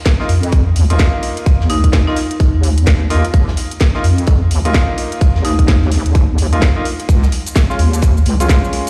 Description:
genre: bass house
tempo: 128 BPM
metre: 4/4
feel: swing 61% on 16ths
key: unclear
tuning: A4 = 440 Hz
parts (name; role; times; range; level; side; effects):
- electronic kick drum; drums; 0.1-8.6 s; none; -14 LUFS; equal; none
- garage drum kit; drums; 0.1-8.9 s; hi-hat, shaker, snare drum; -25 LUFS; equal; none
- modern studio drum kit; drums; 0.1-8.9 s; hi-hat, snare drum; -36 LUFS; equal; none
- bright baby grand piano; stabs; 0.2-8.9 s; Ab3 to F4; -25 LUFS; equal; sidechain pumping, digital delay
- wobble bass; bass; 0.3-8.6 s; Db2 to F2; -16 LUFS; equal; chorus, overdrive, sidechain pumping
- marimba with hard mallets; melody; 1.7-2.4, 5.4-5.6 s; Eb4; -26 LUFS; equal; digital delay
room: little or no reverb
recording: played on a big sound system in a bare room, stone room reverb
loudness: -14 LUFS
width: mono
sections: 0.0-8.9 A section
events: none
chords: 0.0 Ebsus2; 7.1 Db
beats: 0.06 0.53 0.99 | 1.46 1.93 2.40 2.87 | 3.34 3.81 4.28 4.74 | 5.21 5.68 6.15 6.62 | 7.09 7.56 8.03 8.49

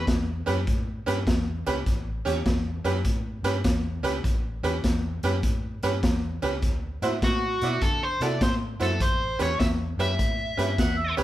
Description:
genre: electric blues shuffle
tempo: 101 BPM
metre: 4/4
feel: swing 66% on 8ths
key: A mixolydian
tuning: A4 = 440 Hz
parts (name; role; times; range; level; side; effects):
- biting overdriven guitar; melody; 0.0, 7.2-11.1 s; F#4 to E5; -28 LUFS; equal; none
- vintage muted fingered electric bass; bass; 0.0-11.2 s; A1 to D3; -30 LUFS; equal; none
- raw garage drum kit; drums; 0.1-11.2 s; hi-hat, kick drum, snare drum; -27 LUFS; equal; none
- tack piano; accompaniment; 0.5-11.2 s; C#4 to D5; -29 LUFS; right 3 dB; none
- mellow harmonica; second line; 10.8-11.2 s; C#5 to F#5; -30 LUFS; right 2 dB; none
room: moderate large studio reverb, RT60 1.2 s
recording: band playing live in one room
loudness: -23 LUFS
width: side -14 dB against mid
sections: 0.0-11.2 A section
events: none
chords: 0.0 A7; 6.6 D7; 9.0 A7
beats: 0.07 0.66 1.26 | 1.86 2.46 3.05 3.65 | 4.25 4.84 5.44 6.03 | 6.63 7.22 7.82 8.41 | 9.01 9.60 10.19 10.79

